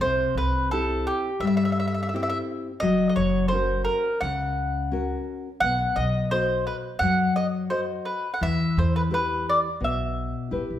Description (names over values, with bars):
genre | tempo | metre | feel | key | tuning
italian folk, Italian serenade | 86 BPM | 4/4 | straight | E minor | A4 = 440 Hz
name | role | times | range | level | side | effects
mandolin | melody | 0.0-10.5 s | G4 to F#5 | -25 LUFS | equal | none
nylon-string guitar | accompaniment | 0.0-10.8 s | B2 to D#5 | -27 LUFS | left 2 dB | none
upright bass | bass | 0.0-10.8 s | F#1 to G2 | -29 LUFS | equal | none
room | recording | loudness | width
wet large studio reverb, RT60 1.2 s | band playing live in one room | -22 LUFS | side -11 dB against mid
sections
0.0-10.8 A section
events
none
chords
0.0 C; 2.8 F#; 5.6 B; 8.4 Em